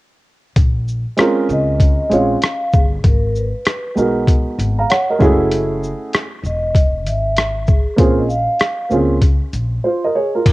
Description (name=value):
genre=hip hop, jazz-hop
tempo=97 BPM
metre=4/4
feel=swing 64% on 16ths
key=unclear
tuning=A4 = 440 Hz
part: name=upright bass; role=bass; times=0.6-10.5 s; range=Fb1 to Db2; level=-21 LUFS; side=equal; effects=none
part: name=boom bap sampler-style drum kit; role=drums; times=0.6-10.5 s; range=crash cymbal, hi-hat, kick drum, rim click, shaker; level=-14 LUFS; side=equal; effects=vintage 12-bit sampler grit, cassette tape
part: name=dark upright piano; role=accompaniment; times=1.2-10.5 s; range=Ab3 to Bb5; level=-16 LUFS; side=right 2 dB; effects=cassette tape
part: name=vibraphone with soft mallets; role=melody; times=1.5-8.9 s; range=Ab4 to F5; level=-21 LUFS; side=equal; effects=cassette tape
room=light reverb, studio ambience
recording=home recording on cassette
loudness=-14 LUFS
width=side -19 dB against mid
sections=0.6-10.5 A section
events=drums muted 9.8-10.5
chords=0.6 Bbm9; 3.0 Abm9; 5.2 Gbm9; 8.0 Bbm9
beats=| 0.56 1.18 1.80 2.42 | 3.04 3.66 4.28 4.89 | 5.51 6.13 6.75 7.37 | 7.99 8.61 9.22 9.84 | 10.46